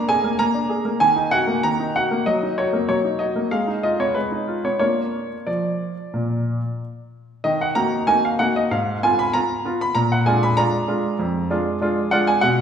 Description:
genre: classical-period piano sonatina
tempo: 96 BPM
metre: 4/4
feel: rubato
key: unclear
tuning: A4 = 441 Hz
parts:
  - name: clear baby grand piano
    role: solo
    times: 0.0-12.6 s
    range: F2 to Cb6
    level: -18 LUFS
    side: equal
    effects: none
room: wet recital hall reverb, RT60 1.7 s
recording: heard from further back in the room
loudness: -18 LUFS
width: side -8 dB against mid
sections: 0.0-7.4 A section; 7.4-12.6 B section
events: none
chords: 0.0 Bb7; 1.0 Ebm; 2.3 Ebm/Gb; 3.5 Fm7b5/Ab; 4.8 Bb; 7.4 Ebm; 8.7 Fdim/Ab; 10.0 Bb7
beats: 0.39 1.01 1.64 | 2.26 2.88 3.52 4.15 | 4.81 5.48 6.14 6.79 | 7.45 8.08 8.71 9.33 | 9.95 10.57 11.20 11.81 | 12.43

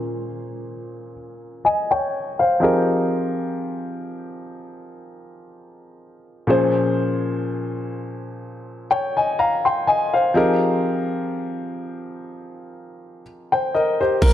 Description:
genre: contemporary R&B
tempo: 62 BPM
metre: 4/4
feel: swing 54% on 16ths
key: unclear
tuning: A4 = 441 Hz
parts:
  - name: warm grand piano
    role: accompaniment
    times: 0.0-14.3 s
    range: Bb2 to C6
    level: -20 LUFS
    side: left 1 dB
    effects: low-pass filter
  - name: warm 808-style bass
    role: bass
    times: 14.2-14.3 s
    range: Bb1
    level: -15 LUFS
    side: right 1 dB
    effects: none
  - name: trap drum kit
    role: drums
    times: 14.2-14.3 s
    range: crash cymbal, kick drum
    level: -16 LUFS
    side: right 1 dB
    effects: none
room: moderate concert hall reverb, RT60 2.2 s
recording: none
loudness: -19 LUFS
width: side -11 dB against mid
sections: 0.0-14.2 A section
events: filter sweep on grand piano 0.0-14.2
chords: 0.0 Bbm9; 2.6 Fm11; 6.5 Bbm9; 10.3 Fm11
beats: 0.67 1.64 | 2.61 3.58 4.54 5.51 | 6.48 7.45 8.41 9.38 | 10.35 11.32 12.29 13.25 | 14.22

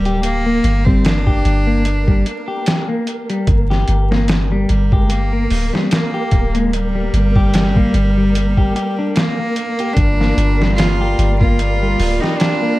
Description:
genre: trip hop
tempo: 74 BPM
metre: 4/4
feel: swing 56% on 16ths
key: unclear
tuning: A4 = 440 Hz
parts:
  - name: bright cello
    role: melody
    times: 0.0-12.8 s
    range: G3 to F4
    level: -20 LUFS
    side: equal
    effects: tape echo
  - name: soft 808-style bass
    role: bass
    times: 0.0-12.2 s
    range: D1 to G1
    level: -17 LUFS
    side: equal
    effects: none
  - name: flickering grainy texture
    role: texture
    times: 0.0-12.8 s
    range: Bb3 to Bb4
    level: -27 LUFS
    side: equal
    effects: built-in reverb
  - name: clean electric guitar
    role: arpeggios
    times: 0.1-12.8 s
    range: G3 to G4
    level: -22 LUFS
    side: left 2 dB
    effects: tape echo
  - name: trip hop sampler-style drum kit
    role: drums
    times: 0.1-12.6 s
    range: hi-hat, kick drum, snare drum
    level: -17 LUFS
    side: equal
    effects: none
  - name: warm studio violin section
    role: sustained chords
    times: 10.0-12.8 s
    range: G3 to D5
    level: -25 LUFS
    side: right 2 dB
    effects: none
room: little or no reverb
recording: dark, warm production, vinyl crackle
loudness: -13 LUFS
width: side -18 dB against mid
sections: 0.0-12.8 A section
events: none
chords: 0.0 Bb6/D; 10.0 Gm7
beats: | 0.24 1.05 1.86 2.67 | 3.48 4.29 5.10 5.92 | 6.72 7.54 8.35 9.16 | 9.97 10.78 11.59 12.40

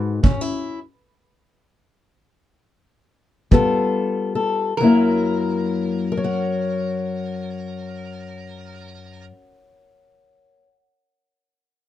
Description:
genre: acoustic country blues, solo or duo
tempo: 46-60 BPM (dotted quarters)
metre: 12/8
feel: straight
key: F# mixolydian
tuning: A4 = 441 Hz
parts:
  - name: lap resonator guitar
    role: melody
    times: 0.0-9.2 s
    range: A#4 to B4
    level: -32 LUFS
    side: right 3 dB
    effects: none
  - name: fingerpicked old ladder-braced acoustic guitar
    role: accompaniment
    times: 0.0-10.8 s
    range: F#2 to F#5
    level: -20 LUFS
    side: left 3 dB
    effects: none
  - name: kick drum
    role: drums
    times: 0.2-3.7 s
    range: none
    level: -16 LUFS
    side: right 1 dB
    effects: none
room: moderate booth ambience, RT60 0.2 s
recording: dark, warm production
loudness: -19 LUFS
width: side -12 dB against mid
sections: 0.0-4.8 A section; 4.8-10.0 B section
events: slowing down 0.0-4.8; stop 0.2-3.5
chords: 0.2 F#5; 3.5 G9; 4.8 F#7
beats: | 0.24 1.28 2.36 3.52 | 4.78 6.10 7.41 8.73

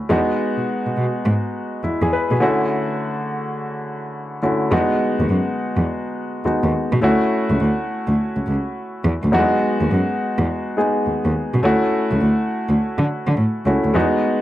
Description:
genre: R&B, new jack swing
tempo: 104 BPM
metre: 4/4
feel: swing 64% on 16ths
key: E major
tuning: A4 = 440 Hz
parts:
  - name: clear grand piano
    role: accompaniment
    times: 0.0-14.4 s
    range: D3 to B4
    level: -20 LUFS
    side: equal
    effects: none
  - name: dark cello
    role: bass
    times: 0.1-14.0 s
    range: C#2 to D3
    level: -19 LUFS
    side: equal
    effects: none
room: light reverb, small room ambience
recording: dark, warm production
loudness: -17 LUFS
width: side -14 dB against mid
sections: 0.0-4.7 A section; 4.7-14.4 B section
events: none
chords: 0.1 Emaj7; 2.4 Dmaj7; 4.7 Emaj7 (rootless); 7.0 Dmaj7 (rootless); 9.3 Emaj7 (rootless); 11.6 Dmaj7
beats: | 0.10 0.68 1.26 1.83 | 2.41 2.99 3.56 4.14 | 4.72 5.29 5.87 6.45 | 7.03 7.60 8.18 8.76 | 9.33 9.91 10.49 11.06 | 11.64 12.22 12.79 13.37 | 13.95

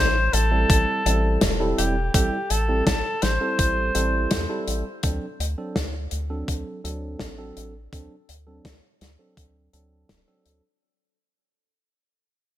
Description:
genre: synthwave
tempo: 83 BPM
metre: 4/4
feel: straight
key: unclear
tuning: A4 = 441 Hz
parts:
  - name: breathy alto saxophone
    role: melody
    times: 0.0-4.7 s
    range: G4 to C5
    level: -25 LUFS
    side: left 1 dB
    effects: tape echo
  - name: round analog bass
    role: bass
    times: 0.0-10.6 s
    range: D1 to E2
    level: -26 LUFS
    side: equal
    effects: tube saturation
  - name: loose indie drum kit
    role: drums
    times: 0.3-10.6 s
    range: hi-hat, snare drum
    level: -26 LUFS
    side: left 2 dB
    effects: gated reverb
  - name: bright tine electric piano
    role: stabs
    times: 0.5-10.6 s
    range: F#3 to A4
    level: -29 LUFS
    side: right 2 dB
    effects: phaser, low-pass filter, ping-pong delay
  - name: electronic kick drum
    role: drums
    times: 0.7-10.2 s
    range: none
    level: -24 LUFS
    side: equal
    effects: overdrive
room: light reverb, small room ambience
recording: none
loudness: -21 LUFS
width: side -13 dB against mid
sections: 0.0-10.8 A section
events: fade-out 0.0-10.8; filter sweep on tine electric piano 0.0-10.8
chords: 0.0 Am7; 5.0 D7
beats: 0.70 1.42 | 2.14 2.87 3.59 4.31 | 5.04 5.76 6.48 7.20 | 7.93 8.65 9.37 10.10

